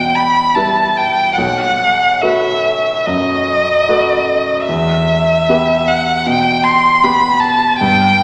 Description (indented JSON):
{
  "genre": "classical, romantic duo for violin and grand piano",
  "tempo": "70-79 BPM",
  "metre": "4/4",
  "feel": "rubato",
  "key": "E minor",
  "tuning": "A4 = 438 Hz",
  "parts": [
    { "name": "warm violin", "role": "melody", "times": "0.0-8.2 s", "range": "D#5 to C6", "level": "-14 LUFS", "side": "equal", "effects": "none" },
    { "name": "clear baby grand piano", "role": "accompaniment", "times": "0.0-8.2 s", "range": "B1 to B4", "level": "-20 LUFS", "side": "equal", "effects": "none" }
  ],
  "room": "wet concert hall reverb, RT60 1.9 s",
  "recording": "none",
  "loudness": "-13 LUFS",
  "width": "mono",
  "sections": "0.0-8.2 A section",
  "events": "none",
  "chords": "0.0 Em; 1.4 B7; 4.7 Em"
}